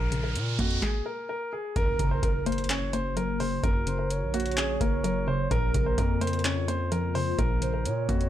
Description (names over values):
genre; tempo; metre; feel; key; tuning
hip hop, trap; 128 BPM; 4/4; half-time; unclear; A4 = 440 Hz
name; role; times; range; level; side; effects
warm concert grand piano; melody; 0.0-8.3 s; Gb4 to Db5; -33 LUFS; left 1 dB; low-pass filter
soft round pluck; accompaniment; 0.0-8.3 s; Gb2 to Db4; -33 LUFS; left 1 dB; chorus, low-pass filter
distorted 808-style bass; bass; 0.0-8.3 s; Gb1 to Bb2; -31 LUFS; equal; distortion
riser and impact; sound effects; 0.0-3.6 s; none; -36 LUFS; right 1 dB; none
booming analog drum machine; drums; 0.1-8.3 s; handclaps, hi-hat, kick drum, snare drum; -29 LUFS; equal; overdrive
gliding portamento lead; second line; 1.8-8.3 s; Bb4 to Db5; -34 LUFS; right 5 dB; chorus, digital delay
glassy FM pad; sustained chords; 2.4-8.3 s; Db3 to Gb4; -36 LUFS; left 4 dB; ensemble chorus, built-in reverb, phaser
room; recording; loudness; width
digital ambience; none; -25 LUFS; side -12 dB against mid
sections
0.0-1.8 A section; 1.8-8.3 B section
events
riser 0.0-1.8; stop 0.8-1.8; impact 1.8-3.6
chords
0.0 Bbm; 1.8 Gb; 5.5 Bbm